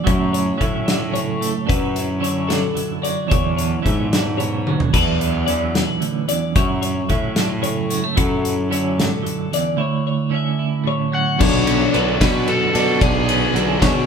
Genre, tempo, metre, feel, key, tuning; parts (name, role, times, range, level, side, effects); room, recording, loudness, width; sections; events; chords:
math rock and midwest emo; 74 BPM (dotted quarters); 6/8; straight; D lydian; A4 = 441 Hz
twelve-string electric guitar; accompaniment; 0.0-14.1 s; D2 to E4; -22 LUFS; right 6 dB; tremolo
twelve-string electric guitar; arpeggios; 0.0-14.1 s; D4 to E5; -24 LUFS; left 7 dB; warbly pitch drift
fuzz picked electric bass; bass; 0.1-14.1 s; B1 to B2; -22 LUFS; equal; overdrive
loose indie drum kit; drums; 0.1-13.9 s; crash cymbal, hi-hat, kick drum, ride cymbal, snare drum, toms; -21 LUFS; left 1 dB
crunchy overdriven guitar; melody; 11.1-14.1 s; G#4 to F#5; -22 LUFS; left 2 dB
overdriven electric guitar; riff; 11.4-14.1 s; F#3 to F#4; -25 LUFS; left 2 dB
moderate large studio reverb, RT60 1.3 s; band playing live in one room; -16 LUFS; side -6 dB against mid
0.0-11.4 A section; 11.4-14.1 B section
drum fill 4.7
0.1 F#m7; 1.7 Dmaj9/F#; 3.3 E13; 4.9 Esus2; 6.6 F#m7; 8.2 Dmaj9/F#; 9.8 Dmaj9; 11.4 Bmadd9